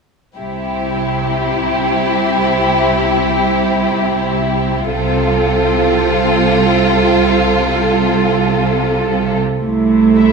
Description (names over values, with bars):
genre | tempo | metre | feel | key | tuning
classical, slow romantic movement for string orchestra | free time | none | none | C major | A4 = 439 Hz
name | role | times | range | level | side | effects
warm symphonic violin section | melody | 0.4-10.3 s | G4 to E5 | -19 LUFS | left 3 dB | none
rich chamber violin section | second line | 0.4-10.3 s | E4 to F4 | -17 LUFS | equal | none
dark studio viola section | accompaniment | 0.4-10.3 s | A3 to E4 | -18 LUFS | right 2 dB | none
rich symphonic cello section | bass | 0.4-10.3 s | C3 | -21 LUFS | right 4 dB | none
rich symphonic double bass section | bass | 0.4-10.3 s | C2 | -20 LUFS | right 6 dB | none
room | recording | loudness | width
moderate scoring stage reverb, RT60 1.6 s | small room ambience | -12 LUFS | side -4 dB against mid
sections
0.4-9.6 A section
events
none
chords
0.4 C